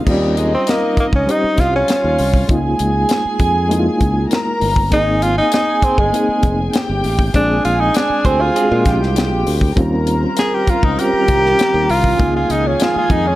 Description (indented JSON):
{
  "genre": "lush 1970s-style soul",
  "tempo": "99 BPM",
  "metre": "4/4",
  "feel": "straight",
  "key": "unclear",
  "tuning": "A4 = 441 Hz",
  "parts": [
    { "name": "warm studio string section", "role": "second line", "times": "0.0-13.4 s", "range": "Eb4 to Bb5", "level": "-20 LUFS", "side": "right 1 dB", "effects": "none" },
    { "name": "reed electric piano", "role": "accompaniment", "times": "0.0-13.4 s", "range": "G3 to C5", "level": "-21 LUFS", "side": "left 1 dB", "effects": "fast tremolo" },
    { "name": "soft string machine", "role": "sustained chords", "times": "0.0, 9.8-13.4 s", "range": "Eb3 to C5", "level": "-29 LUFS", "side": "left 1 dB", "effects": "none" },
    { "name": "breathy tenor saxophone", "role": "melody", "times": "0.1-13.4 s", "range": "G3 to Ab4", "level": "-17 LUFS", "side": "equal", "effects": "none" },
    { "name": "modern bright fingered electric bass", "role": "bass", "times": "0.1-13.4 s", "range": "F1 to Bb2", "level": "-19 LUFS", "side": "equal", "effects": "none" },
    { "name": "tight funk drum kit", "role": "drums", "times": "0.1-13.2 s", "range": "crash cymbal, hi-hat, kick drum, snare drum", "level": "-18 LUFS", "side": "equal", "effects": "none" },
    { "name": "direct-recorded clean electric guitar", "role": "riff", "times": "8.3-9.6 s", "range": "Ab3 to C5", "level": "-23 LUFS", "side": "right 6 dB", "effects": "none" }
  ],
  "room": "light reverb, small room ambience",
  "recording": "none",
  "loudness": "-13 LUFS",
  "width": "side -16 dB against mid",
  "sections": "0.1-13.4 A section",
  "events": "tenor saxophone solo 0.1-13.4",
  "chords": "0.1 Eb13; 2.5 Db6; 4.9 Abmaj7; 7.3 Bb13; 9.8 Eb13; 12.2 Db6",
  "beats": "| 0.07 0.67 1.28 1.89 | 2.49 3.10 3.71 4.31 | 4.92 5.53 6.13 6.74 | 7.35 7.95 8.56 9.17 | 9.77 10.38 10.98 11.59 | 12.20 12.80"
}